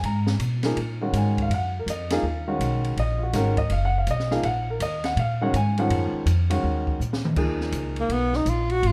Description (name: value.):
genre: modal jazz.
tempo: 164 BPM.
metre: 4/4.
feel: swing 64% on 8ths.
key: G# dorian.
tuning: A4 = 436 Hz.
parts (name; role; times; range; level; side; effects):
warm grand piano; accompaniment; 0.0-8.4 s; D#3 to A#5; -29 LUFS; equal; none.
upright bass; bass; 0.0-8.9 s; F#1 to B2; -27 LUFS; equal; none.
open jazz drum kit; drums; 0.0-8.9 s; crash cymbal, hi-hat, kick drum, ride cymbal, snare drum, toms; -34 LUFS; equal; none.
breathy tenor saxophone; melody; 8.0-8.9 s; A#3 to F#4; -25 LUFS; equal; none.
room: light reverb.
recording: dark, warm production.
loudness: -24 LUFS.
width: mono.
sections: 0.0-7.4 A section; 7.4-8.9 A section.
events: drum fill 7.0-7.4; tenor saxophone solo 7.4-8.9.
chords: 0.0 G#m9.